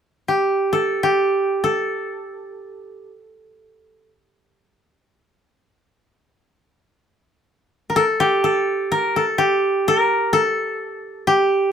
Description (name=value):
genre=japanese traditional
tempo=free time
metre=none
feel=none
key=unclear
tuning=A4 = 439 Hz
part: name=koto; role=melody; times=0.3-11.7 s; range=G4 to Bb4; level=-17 LUFS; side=equal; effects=none
room=moderate studio reverb, RT60 0.6 s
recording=none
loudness=-17 LUFS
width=side -8 dB against mid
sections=0.0-8.0 A section; 8.0-11.7 B section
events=none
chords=none